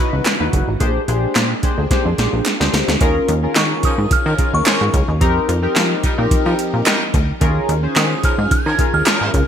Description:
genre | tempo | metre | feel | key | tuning
early-eighties boogie funk | 109 BPM | 4/4 | straight | unclear | A4 = 440 Hz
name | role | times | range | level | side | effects
chorused polysynth | accompaniment | 0.0-9.4 s | C4 to C5 | -21 LUFS | left 2 dB | none
string machine, violins | sustained chords | 0.0-9.5 s | Db3 to Eb5 | -28 LUFS | equal | ensemble chorus
plucky analog bass | bass | 0.1-9.4 s | Gb1 to F3 | -19 LUFS | equal | none
electro analog drum machine | drums | 0.3-9.5 s | handclaps, hi-hat, kick drum, snare drum | -18 LUFS | equal | overdrive, gated reverb
group handclap | percussion | 0.3-9.2 s | none | -27 LUFS | right 3 dB | none
glassy synth bell | melody | 3.6-9.3 s | Db6 to Ab6 | -21 LUFS | right 2 dB | chorus, tremolo, ping-pong delay
warm horn section | second line | 3.8-9.3 s | F3 to Bb4 | -25 LUFS | equal | ping-pong delay
room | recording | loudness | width
light reverb | bright 1980s-style digital production | -14 LUFS | side -8 dB against mid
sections
0.0-3.0 A section; 3.0-9.5 B section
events
drum fill 1.9-3.0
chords
0.0 Dbm11; 0.8 Bb13; 3.0 Eb9sus4; 5.2 F9sus4; 7.4 Eb9sus4

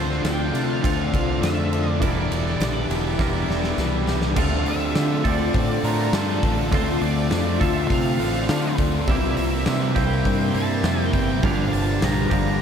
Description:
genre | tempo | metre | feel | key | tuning
rock, shoegaze and dream pop | 102 BPM | 4/4 | straight | D minor | A4 = 440 Hz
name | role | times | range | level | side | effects
octave-fuzz lead guitar | melody | 0.0-12.6 s | A4 to Bb5 | -31 LUFS | right 1 dB | distortion, diffuse ambient delay
soft additive organ-like pad | sustained chords | 0.0-12.6 s | F4 to D6 | -30 LUFS | left 3 dB | ensemble chorus, built-in reverb
direct-recorded clean electric guitar | arpeggios | 0.0-12.6 s | E3 to A4 | -34 LUFS | left 4 dB | wide subtle chorus, diffuse ambient delay
thick fuzz guitar | riff | 0.0-12.6 s | E2 to D4 | -28 LUFS | left 9 dB | distortion, lush chorus
tight distorted guitar | riff | 0.0-12.6 s | G2 to F4 | -31 LUFS | right 2 dB | distortion
twangy electric guitar | riff | 0.0-12.6 s | G2 to Bb4 | -26 LUFS | right 6 dB | reverse reverb
growling fingered electric bass | bass | 0.0-12.6 s | E1 to D3 | -25 LUFS | equal | overdrive
huge arena drum kit | drums | 0.1-12.4 s | crash cymbal, hi-hat, kick drum, ride cymbal, snare drum | -26 LUFS | equal | none
tambourine | percussion | 0.1-12.2 s | none | -45 LUFS | right 4 dB | none
room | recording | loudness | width
moderate lush hall reverb, RT60 1.6 s | dreamy mix soaked in reverb, faint mains hum | -19 LUFS | side -7 dB against mid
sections
0.0-4.4 A section; 4.4-12.6 B section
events
drum fill 3.2-4.4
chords
0.0 Dm7; 2.0 Em7b5; 4.4 Dm7; 9.1 C7; 11.4 Gm7

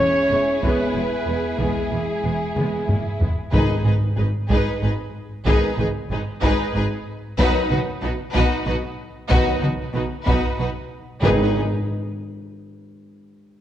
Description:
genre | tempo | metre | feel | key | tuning
cinematic, epic orchestral film score | 93 BPM | 3/4 | straight | G# minor | A4 = 441 Hz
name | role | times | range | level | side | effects
rich symphonic violin section | melody | 0.0-11.6 s | G#4 to C#5 | -30 LUFS | left 3 dB | none
rich symphonic violin section | second line | 0.0-11.6 s | E4 to G#4 | -28 LUFS | left 1 dB | none
rich symphonic viola section | accompaniment | 0.0-11.6 s | G#3 to D#4 | -29 LUFS | right 1 dB | none
mellow French horn section | sustained chords | 0.0-11.5 s | G#3 to B4 | -29 LUFS | left 2 dB | none
warm trumpet section | stabs | 0.0-3.2 s | G#4 to C#5 | -24 LUFS | equal | none
rich symphonic cello section | bass | 0.0-11.6 s | E2 to B2 | -28 LUFS | right 2 dB | none
rich symphonic double bass section | bass | 0.0-11.6 s | E1 to B1 | -27 LUFS | right 2 dB | none
taiko ensemble | drums | 0.6-10.9 s | none | -23 LUFS | equal | none
dark trombone section | sustained chords | 3.5-11.5 s | D#3 to G#3 | -30 LUFS | right 3 dB | none
timpani | percussion | 3.5-4.5, 11.2-11.5 s | G#2 | -25 LUFS | equal | none
room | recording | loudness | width
wet scoring stage reverb, RT60 1.5 s | worn, warbling old tape, cassette tape, warbly pitch drift | -19 LUFS | side -11 dB against mid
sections
0.0-3.5 A section; 3.5-11.2 B section; 11.2-13.2 C section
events
drum fill 2.6-3.5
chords
0.0 E; 3.5 G#m; 7.4 B; 11.2 G#m

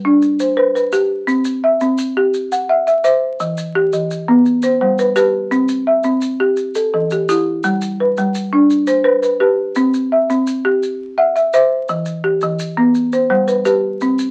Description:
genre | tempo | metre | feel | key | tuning
southern african traditional, mbira-style interlocking cycle | 113 BPM (dotted quarters) | 12/8 | straight | G major | A4 = 438 Hz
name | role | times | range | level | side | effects
folk marimba with medium hard mallets | arpeggios | 0.0-14.3 s | E3 to F#5 | -16 LUFS | equal | none
maracas | percussion | 0.2-14.3 s | none | -36 LUFS | equal | none
room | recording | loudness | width
moderate small room reverb, RT60 0.5 s | very old 78 rpm record, vinyl crackle | -16 LUFS | mono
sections
0.0-14.3 A section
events
none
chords
0.0 G; 1.3 C; 3.4 Em; 4.5 G; 5.5 C; 6.6 Em; 7.6 G; 9.8 C; 11.9 Em; 12.9 G

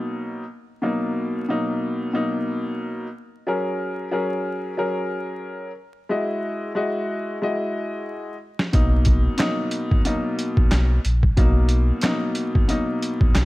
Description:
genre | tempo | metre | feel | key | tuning
hip hop, boom-bap hip-hop | 91 BPM | 4/4 | swing 56% on 16ths | B major | A4 = 441 Hz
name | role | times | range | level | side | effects
warm upright piano | accompaniment | 0.0-13.4 s | B2 to D#5 | -24 LUFS | left 1 dB | high-pass filter, low-pass filter
boom bap sampler-style drum kit | drums | 8.6-13.4 s | handclaps, hi-hat, kick drum, snare drum | -20 LUFS | equal | none
sub bass with octave | bass | 8.7-13.4 s | G#1 to B1 | -19 LUFS | equal | none
finger snap | percussion | 9.4-13.4 s | none | -38 LUFS | right 3 dB | none
room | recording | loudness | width
small room ambience | vinyl crackle | -20 LUFS | side -19 dB against mid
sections
0.0-13.4 A section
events
drum fill 8.1-8.7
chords
0.0 Bmaj7; 3.5 F#add9; 6.1 Emaj7/G#; 8.7 Bmaj7

